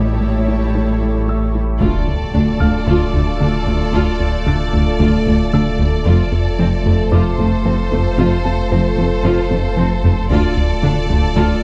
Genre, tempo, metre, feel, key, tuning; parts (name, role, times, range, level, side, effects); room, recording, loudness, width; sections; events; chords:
cinematic, hybrid orchestral and electronic film score; 113 BPM; 4/4; straight; D minor; A4 = 440 Hz
warm symphonic violin section; second line; 0.0-11.6 s; A4 to C#5; -31 LUFS; equal
rich symphonic viola section; accompaniment; 0.0-11.6 s; G3 to F4; -27 LUFS; equal
evolving wavetable pad; sustained chords; 0.0-11.6 s; A3 to D5; -28 LUFS; equal; phaser, built-in reverb
plucky analog bass; riff; 0.0-11.5 s; D2 to A3; -21 LUFS; equal
pure sine sub bass; bass; 0.0-11.6 s; D1 to A1; -24 LUFS; equal
rich symphonic cello section; bass; 0.0-11.4 s; D2 to A2; -25 LUFS; equal
warm concert grand piano; texture; 1.3-11.6 s; E5 to A6; -35 LUFS; equal; digital delay
rich symphonic violin section; melody; 1.8-11.6 s; C5 to D5; -28 LUFS; equal
mellow French horn section; sustained chords; 1.8-11.6 s; A3 to F4; -29 LUFS; equal
dark tuba; bass; 1.8-11.5 s; F1 to D2; -26 LUFS; equal
rich symphonic double bass section; bass; 1.8-11.4 s; F1 to D2; -25 LUFS; equal
impact; sound effects; 1.8-3.9 s; -28 LUFS; equal
moderate recital hall reverb, RT60 1.8 s; dark, warm production; -16 LUFS; mono
0.0-1.8 A section; 1.8-11.6 B section
impact 1.8-3.9
0.0 A7; 1.8 Dm; 6.1 F; 10.3 Dm